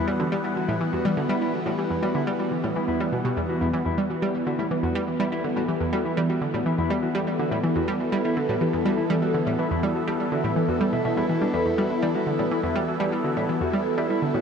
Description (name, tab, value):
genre	ambient, sequencer-driven space music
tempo	123 BPM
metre	4/4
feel	straight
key	E minor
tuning	A4 = 440 Hz
part	phased analog pad	sustained chords	0.0-14.4 s	E3 to F#5	-26 LUFS	equal	phaser, chorus
part	mellow electric guitar	arpeggios	0.0-14.4 s	E3 to E5	-29 LUFS	left 3 dB	auto-pan, tape echo
part	analog pluck	riff	0.0-14.4 s	E2 to G3	-26 LUFS	right 1 dB	chorus, tape echo
room	wet huge ambient reverb, RT60 8.4 s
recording	dark, warm production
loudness	-22 LUFS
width	side -6 dB against mid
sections	0.0-14.4 A section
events	none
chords	0.0 Em7